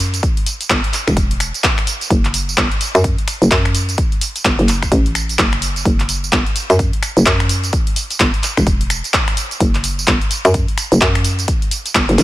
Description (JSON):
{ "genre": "bass house", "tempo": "128 BPM", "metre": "4/4", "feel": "swing 61% on 16ths", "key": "F# phrygian", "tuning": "A4 = 440 Hz", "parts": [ { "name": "hollow knocking FM bass", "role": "bass", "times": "0.0-12.2 s", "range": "E1 to F#2", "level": "-15 LUFS", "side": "equal", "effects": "tube saturation, sidechain pumping" }, { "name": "big-room dance drum kit", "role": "drums", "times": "0.0-12.2 s", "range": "finger snaps, handclaps, hi-hat, tambourine", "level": "-18 LUFS", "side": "equal", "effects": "none" }, { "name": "electronic kick drum", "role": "drums", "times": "0.2-12.1 s", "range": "none", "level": "-18 LUFS", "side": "equal", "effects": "none" } ], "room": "little or no reverb", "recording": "none", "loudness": "-13 LUFS", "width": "side -16 dB against mid", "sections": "0.0-12.2 A section", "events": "none", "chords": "none" }